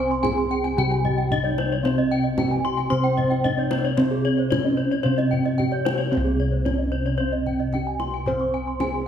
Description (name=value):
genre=Balinese gamelan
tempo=112 BPM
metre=4/4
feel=straight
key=C pelog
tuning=A4 = 440 Hz
part: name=gamelan-type bronze metallophone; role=melody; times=0.0-9.1 s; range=C4 to C5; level=-26 LUFS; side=right 1 dB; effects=none
part: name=gamelan-type bronze metallophone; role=accompaniment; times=0.0-9.1 s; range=C3 to C4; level=-31 LUFS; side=right 3 dB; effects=none
part: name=gamelan-type bronze metallophone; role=arpeggios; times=0.0-8.9 s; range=C5 to C6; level=-28 LUFS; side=left 7 dB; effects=none
part: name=gamelan-type bossed gongs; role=bass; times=0.0-9.1 s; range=C2 to C5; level=-24 LUFS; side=equal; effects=none
part: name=gamelan-type bronze metallophone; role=arpeggios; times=0.1-9.1 s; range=Ab4-20c to Db6+20c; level=-30 LUFS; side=right 3 dB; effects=none
part: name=kendang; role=percussion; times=0.2-8.9 s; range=none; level=-32 LUFS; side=left 3 dB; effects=none
room=moderate scoring stage reverb, RT60 1.7 s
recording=none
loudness=-20 LUFS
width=side -8 dB against mid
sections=0.0-9.1 A section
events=none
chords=none